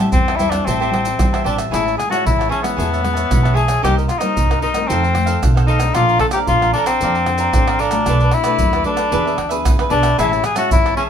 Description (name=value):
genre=samba and choro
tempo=113 BPM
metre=4/4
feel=straight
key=unclear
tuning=A4 = 439 Hz
part: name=cavaquinho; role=accompaniment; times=0.0-11.1 s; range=D4 to Bb5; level=-23 LUFS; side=right 3 dB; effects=none
part: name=nylon-string guitar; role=accompaniment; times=0.0-11.1 s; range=F2 to C5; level=-25 LUFS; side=left 3 dB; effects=none
part: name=upright bass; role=bass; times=0.0-10.9 s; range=G1 to F2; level=-20 LUFS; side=right 1 dB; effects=none
part: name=warm cor anglais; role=melody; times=0.1-11.0 s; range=B3 to A4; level=-18 LUFS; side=left 3 dB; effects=none
part: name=maracas, surdo, pandeiro and tamborim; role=percussion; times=0.1-11.1 s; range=none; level=-20 LUFS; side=right 1 dB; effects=none
room=moderate studio ambience, RT60 0.5 s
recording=band playing live in one room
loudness=-14 LUFS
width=side -8 dB against mid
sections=0.0-1.7 A section; 1.7-11.1 B section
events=none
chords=0.0 Am7; 1.7 Amaj7; 3.8 Cm7; 4.9 F7; 6.0 Bbmaj9; 8.1 Bm7; 9.1 E7; 10.2 Amaj7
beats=0.14 0.66 1.19 | 1.72 2.25 2.78 3.31 | 3.84 4.37 4.90 5.43 | 5.96 6.49 7.01 7.54 | 8.07 8.60 9.13 9.66 | 10.19 10.72